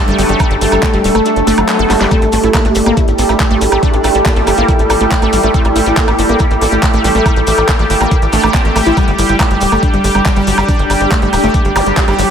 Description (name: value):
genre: psychedelic trance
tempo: 140 BPM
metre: 4/4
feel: straight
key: unclear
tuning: A4 = 440 Hz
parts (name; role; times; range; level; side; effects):
- bubbling stepped-filter texture; sustained chords; 0.0-12.3 s; G3 to A4; -15 LUFS; right 1 dB; chorus, built-in reverb, sidechain pumping
- granular cloud pad; texture; 0.0-12.3 s; D4 to A5; -20 LUFS; equal; built-in reverb, sidechain pumping
- wide unison pluck; riff; 0.1-12.2 s; F#3 to A4; -16 LUFS; equal; auto-pan, sidechain pumping, ping-pong delay
- tight sequencer bass; bass; 0.1-12.2 s; D1 to A1; -16 LUFS; equal; none
- garage drum kit; drums; 0.1-12.3 s; handclaps, hi-hat, snare drum, woodblock; -19 LUFS; right 1 dB; none
- maracas; percussion; 0.1-12.3 s; none; -28 LUFS; left 1 dB; none
- metallic wobble bass; second line; 0.2-11.0 s; B3 to E4; -25 LUFS; right 2 dB; none
- electronic kick drum; drums; 0.4-12.1 s; none; -14 LUFS; equal; none
- swell and zap; sound effects; 1.6-2.1, 11.8-11.9 s; none; -22 LUFS; left 3 dB; none
room: moderate plate reverb, RT60 1.9 s, digital ambience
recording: dreamy mix soaked in reverb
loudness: -9 LUFS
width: side -8 dB against mid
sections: 0.0-12.3 A section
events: kick drops out 1.3-2.1; drum fill 1.9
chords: 0.0 G5; 2.1 A5; 9.0 G5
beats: | 0.40 0.83 1.26 1.69 | 2.11 2.54 2.97 3.40 | 3.83 4.26 4.68 5.11 | 5.54 5.97 6.40 6.83 | 7.26 7.68 8.11 8.54 | 8.97 9.40 9.83 10.26 | 10.69 11.11 11.54 11.97